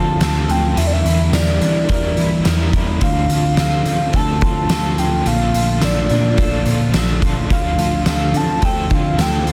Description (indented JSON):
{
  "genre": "dream pop",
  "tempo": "107 BPM",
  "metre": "4/4",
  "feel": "straight",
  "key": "D minor",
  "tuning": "A4 = 440 Hz",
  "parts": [
    { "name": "warbly nostalgic lead", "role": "melody", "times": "0.0-9.5 s", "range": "D5 to A5", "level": "-25 LUFS", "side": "equal", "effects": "chorus, tremolo, tape echo" },
    { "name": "biting overdriven guitar", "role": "accompaniment", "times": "0.0-9.5 s", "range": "Bb2 to Bb4", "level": "-30 LUFS", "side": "equal", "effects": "tremolo, lush chorus" },
    { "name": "phased analog pad", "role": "sustained chords", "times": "0.0-9.5 s", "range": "Bb2 to F4", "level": "-26 LUFS", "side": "equal", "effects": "phaser, chorus" },
    { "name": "clean electric guitar", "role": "arpeggios", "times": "0.0-9.5 s", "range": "Bb2 to Bb4", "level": "-27 LUFS", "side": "equal", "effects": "subtle chorus, tape echo" },
    { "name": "picked electric bass", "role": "bass", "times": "0.0-9.5 s", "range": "Bb1 to E3", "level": "-22 LUFS", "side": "equal", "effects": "none" },
    { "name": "oversized low-tuned drum kit", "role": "drums", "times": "0.2-9.5 s", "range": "hi-hat, kick drum, snare drum, tambourine", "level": "-22 LUFS", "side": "equal", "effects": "none" }
  ],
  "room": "light reverb, studio reverb",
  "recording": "dense, heavily limited modern master",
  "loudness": "-17 LUFS",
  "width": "mono",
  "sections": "0.0-9.5 A section",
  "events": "none",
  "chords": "0.0 Dm7; 0.8 Em7b5; 3.0 Dm7; 5.3 Bbmaj7; 7.5 Dm7"
}